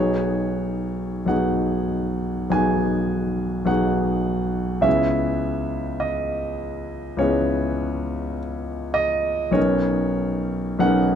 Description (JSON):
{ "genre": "classical, impressionist solo piano", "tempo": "41-52 BPM", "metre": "4/4", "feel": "rubato", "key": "unclear", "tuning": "A4 = 440 Hz", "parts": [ { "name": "clear grand piano", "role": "solo", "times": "0.0-11.2 s", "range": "B1 to G#5", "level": "-20 LUFS", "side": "equal", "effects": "none" } ], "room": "light reverb", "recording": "close, detailed microphones", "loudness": "-20 LUFS", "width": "side -8 dB against mid", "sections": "0.0-11.2 A section", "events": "none", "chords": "0.0 G#m7/B; 4.9 C#m7; 9.6 Bmaj9" }